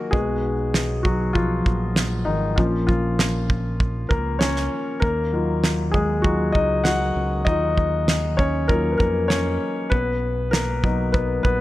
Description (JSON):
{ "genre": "piano-driven pop", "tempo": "98 BPM", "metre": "4/4", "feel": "straight", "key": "Eb minor", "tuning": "A4 = 439 Hz", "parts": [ { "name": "warm grand piano", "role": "accompaniment", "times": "0.0-11.6 s", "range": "Eb3 to Gb5", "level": "-22 LUFS", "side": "left 2 dB", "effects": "none" }, { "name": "fingered electric bass", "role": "bass", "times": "0.1-11.6 s", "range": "Ab1 to F2", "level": "-25 LUFS", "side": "right 1 dB", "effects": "none" }, { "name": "damped 70s drum kit", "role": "drums", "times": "0.1-11.6 s", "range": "kick drum, snare drum", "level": "-23 LUFS", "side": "right 1 dB", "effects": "none" } ], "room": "light reverb", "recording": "bright 1980s-style digital production", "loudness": "-19 LUFS", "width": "side -16 dB against mid", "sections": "0.0-11.6 A section", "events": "grand piano solo 0.0-11.6", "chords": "0.1 B; 2.6 Bbm; 5.0 Ebmadd9; 9.9 B" }